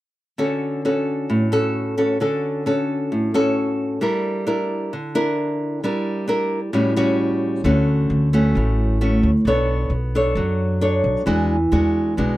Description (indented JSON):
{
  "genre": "bossa nova",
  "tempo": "132 BPM",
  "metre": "4/4",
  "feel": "straight",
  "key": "D major",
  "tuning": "A4 = 440 Hz",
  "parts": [
    { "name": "nylon-string guitar", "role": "accompaniment", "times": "0.4-12.4 s", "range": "A2 to C#5", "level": "-19 LUFS", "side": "equal", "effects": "none" },
    { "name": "upright bass", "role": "bass", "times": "7.6-12.4 s", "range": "A1 to F#2", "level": "-20 LUFS", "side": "equal", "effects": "none" }
  ],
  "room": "light reverb",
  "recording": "dry, close 1970s-style studio recording",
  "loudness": "-18 LUFS",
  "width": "side -16 dB against mid",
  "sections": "0.4-7.6 A section; 7.6-12.4 B section",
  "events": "none",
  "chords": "0.4 Dmaj7; 4.0 Gm6; 6.7 A6; 7.6 Dmaj7; 9.5 Bm9; 11.3 E9",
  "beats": "| 0.40 0.85 1.30 1.75 | 2.21 2.66 3.11 3.56 | 4.02 4.47 4.92 5.38 | 5.83 6.28 6.74 7.19 | 7.64 8.10 8.55 9.00 | 9.46 9.91 10.36 10.81 | 11.27 11.72 12.17"
}